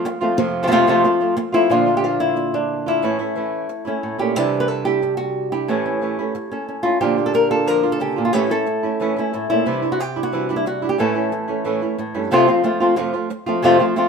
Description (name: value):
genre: flamenco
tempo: 181 BPM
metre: 4/4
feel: straight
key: unclear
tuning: A4 = 440 Hz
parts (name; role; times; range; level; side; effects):
- flamenco guitar; melody; 0.0-14.1 s; F2 to B4; -18 LUFS; left 1 dB; none
- flamenco guitar; stabs; 0.0-14.0 s; F2 to F4; -23 LUFS; right 4 dB; none
room: moderate stone room reverb, RT60 1.0 s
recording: minimal, uncompressed stereo recording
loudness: -17 LUFS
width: side -5 dB against mid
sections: 0.0-1.7 A section; 1.7-12.3 B section; 12.3-14.1 A section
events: none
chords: 0.0 F; 1.7 Bb; 3.0 A; 4.4 Cadd9; 5.7 A; 7.0 Bb; 8.3 A; 9.7 Cadd9; 11.0 A; 12.3 F